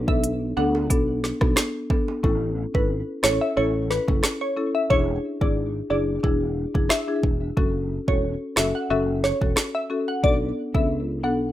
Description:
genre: dancehall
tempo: 90 BPM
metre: 4/4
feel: straight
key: A major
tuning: A4 = 438 Hz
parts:
  - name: marimba with medium mallets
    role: accompaniment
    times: 0.0-11.4 s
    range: B3 to A4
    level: -26 LUFS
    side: left 2 dB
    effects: plate reverb
  - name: sustaining fretless electric bass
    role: bass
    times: 0.0-11.5 s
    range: E1 to D2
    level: -28 LUFS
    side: right 1 dB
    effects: ensemble chorus
  - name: glassy wavetable pluck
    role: melody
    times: 0.1-11.5 s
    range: B4 to F#5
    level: -26 LUFS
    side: equal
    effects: chorus, plate reverb
  - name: deep house drum kit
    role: drums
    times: 0.1-10.9 s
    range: hi-hat, kick drum, rim click, snare drum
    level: -22 LUFS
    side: right 1 dB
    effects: none
  - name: bongos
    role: percussion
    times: 0.6-2.2 s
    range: none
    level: -34 LUFS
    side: right 7 dB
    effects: none
room: moderate studio reverb, RT60 0.6 s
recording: rough home demo mix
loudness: -21 LUFS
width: side -13 dB against mid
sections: 0.0-2.2 A section; 2.2-11.5 B section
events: hi-hats muted 2.2-11.5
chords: 0.0 Bm7; 2.2 A; 4.9 E7; 7.6 F#m; 10.2 Bm7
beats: 0.24 0.90 1.57 | 2.24 2.90 3.57 4.24 | 4.90 5.57 6.24 6.90 | 7.57 8.24 8.90 9.57 | 10.24 10.90

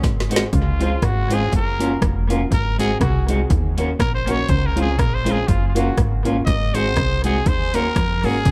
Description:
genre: ska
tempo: 121 BPM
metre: 4/4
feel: swing 56% on 8ths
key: Db major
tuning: A4 = 440 Hz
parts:
  - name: mellow electric guitar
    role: riff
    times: 0.0-8.5 s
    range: F2 to F3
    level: -30 LUFS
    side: equal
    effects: none
  - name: upright bass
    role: bass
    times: 0.0-8.5 s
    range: F1 to F2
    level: -25 LUFS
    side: equal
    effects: none
  - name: deep house drum kit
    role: drums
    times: 0.0-8.5 s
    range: hi-hat, kick drum, rim click, snare drum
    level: -24 LUFS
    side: equal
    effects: overdrive
  - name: electric guitar at the edge of break-up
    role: accompaniment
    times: 0.3-8.4 s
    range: Ab3 to Gb4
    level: -27 LUFS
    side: equal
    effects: none
  - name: dark upright piano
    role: stabs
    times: 0.3-8.4 s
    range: C4 to C5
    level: -29 LUFS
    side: equal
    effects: dub echo
  - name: growling trumpet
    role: melody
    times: 0.5-8.5 s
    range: F4 to Eb5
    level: -27 LUFS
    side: equal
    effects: dub echo
room: moderate small room reverb, RT60 0.5 s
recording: none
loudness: -19 LUFS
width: mono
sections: 0.5-8.5 A section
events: drum fill 0.0-0.5; trumpet solo 0.5-8.5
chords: 0.0 Ab7; 0.5 Dbmaj7; 1.5 Gbmaj7; 2.5 Ab7; 3.5 Ebm7; 4.5 Dbmaj7; 5.5 Gbmaj7; 6.5 Ab7; 7.5 Ebm7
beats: 0.04 | 0.53 1.03 1.52 2.02 | 2.51 3.01 3.50 4.00 | 4.50 4.99 5.49 5.98 | 6.48 6.97 7.47 7.96 | 8.46

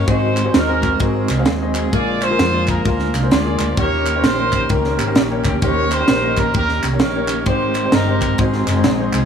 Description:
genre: uptempo gospel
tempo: 130 BPM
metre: 4/4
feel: swing 63% on 8ths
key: Ab major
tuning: A4 = 440 Hz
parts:
  - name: mellow horn section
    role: melody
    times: 0.0-9.3 s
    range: C4 to D5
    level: -20 LUFS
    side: equal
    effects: analog delay
  - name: mellow tonewheel organ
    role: sustained chords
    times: 0.0-9.3 s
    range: D3 to G4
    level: -23 LUFS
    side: right 5 dB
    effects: fast rotary speaker, chorus vibrato
  - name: hollow-body short-scale fingered electric bass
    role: bass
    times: 0.0-9.3 s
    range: Gb1 to F2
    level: -22 LUFS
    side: left 1 dB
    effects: none
  - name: clear grand piano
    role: accompaniment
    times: 0.1-9.2 s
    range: Ab2 to Gb5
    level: -23 LUFS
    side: left 4 dB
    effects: analog delay
  - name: crisp fusion drum kit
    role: drums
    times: 0.1-9.2 s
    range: kick drum, ride cymbal, snare drum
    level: -19 LUFS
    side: right 1 dB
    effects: none
  - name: group handclap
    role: percussion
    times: 0.4-9.2 s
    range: none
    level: -30 LUFS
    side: right 2 dB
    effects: analog delay
room: light reverb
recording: echo-heavy mix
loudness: -14 LUFS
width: side -7 dB against mid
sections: 0.0-9.3 A section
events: none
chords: 0.1 Ab7; 1.9 Bb7; 3.8 Eb7; 7.5 Abmaj7; 8.4 Ab7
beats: | 0.08 0.54 1.00 1.47 | 1.93 2.39 2.85 3.31 | 3.78 4.24 4.70 5.16 | 5.62 6.08 6.55 7.01 | 7.47 7.93 8.40 8.86

